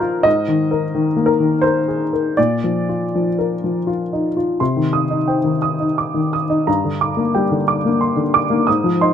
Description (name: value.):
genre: neoclassical minimalist piano.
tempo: 78-91 BPM.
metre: 3/4.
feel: rubato.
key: C minor.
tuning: A4 = 440 Hz.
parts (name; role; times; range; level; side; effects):
warm upright piano; solo; 0.0-9.1 s; G2 to Eb6; -15 LUFS; left 1 dB; none.
room: little or no reverb.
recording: close, detailed microphones.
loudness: -15 LUFS.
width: side -8 dB against mid.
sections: 0.0-4.6 A section; 4.6-9.1 B section.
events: none.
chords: 0.3 Absus2; 2.4 Bb; 4.6 Cm; 6.7 Gm.